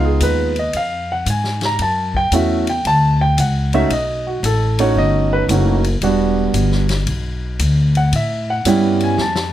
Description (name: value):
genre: jazz piano trio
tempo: 114 BPM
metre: 4/4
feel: swing 67% on 8ths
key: unclear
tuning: A4 = 440 Hz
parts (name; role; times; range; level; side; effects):
- warm grand piano; melody; 0.0-9.5 s; G3 to Bb5; -17 LUFS; right 2 dB; none
- upright bass; bass; 0.0-9.5 s; E1 to A2; -18 LUFS; left 1 dB; none
- vintage drum kit; drums; 0.2-9.5 s; hi-hat, kick drum, ride cymbal, snare drum; -27 LUFS; left 3 dB; none
room: light reverb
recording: none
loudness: -14 LUFS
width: side -12 dB against mid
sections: 0.0-9.5 A section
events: drum fill 9.2-9.5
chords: 0.0 C#7; 1.8 F#m7; 3.9 B7; 6.0 Em7; 8.1 A7